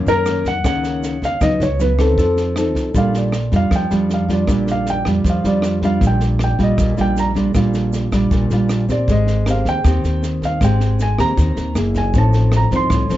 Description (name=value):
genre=bossa nova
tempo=157 BPM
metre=4/4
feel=straight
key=Bb major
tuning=A4 = 440 Hz
part: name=nylon-string guitar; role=accompaniment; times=0.0-13.2 s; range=F#2 to Bb4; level=-19 LUFS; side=equal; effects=none
part: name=upright bass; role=bass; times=0.0-13.2 s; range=Gb1 to F#2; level=-19 LUFS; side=equal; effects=none
part: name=dark baby grand piano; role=melody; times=0.1-13.2 s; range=A4 to C6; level=-22 LUFS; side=right 1 dB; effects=none
part: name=compact cocktail drum kit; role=drums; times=0.1-13.1 s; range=kick drum, rim click, snare drum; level=-23 LUFS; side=equal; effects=none
part: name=egg shaker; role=percussion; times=0.1-13.2 s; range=none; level=-42 LUFS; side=right 8 dB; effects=none
room=light reverb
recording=dark, warm production, nothing above 7.7 kHz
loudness=-14 LUFS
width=side -14 dB against mid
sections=0.0-2.9 A section; 2.9-13.2 B section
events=grand piano solo 2.9-13.2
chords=0.0 F#6; 1.4 C#9sus4; 2.2 F7; 2.9 Bb6; 6.0 Ebmaj9/Bb (rootless); 9.1 Abmaj9; 11.8 Gb9; 12.1 F7/A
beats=0.26 0.64 1.03 | 1.41 1.79 2.18 2.56 | 2.95 3.33 3.72 4.10 | 4.48 4.87 5.25 5.63 | 6.02 6.40 6.78 7.17 | 7.55 7.93 8.32 8.70 | 9.08 9.46 9.85 10.23 | 10.61 10.99 11.38 11.76 | 12.14 12.53 12.91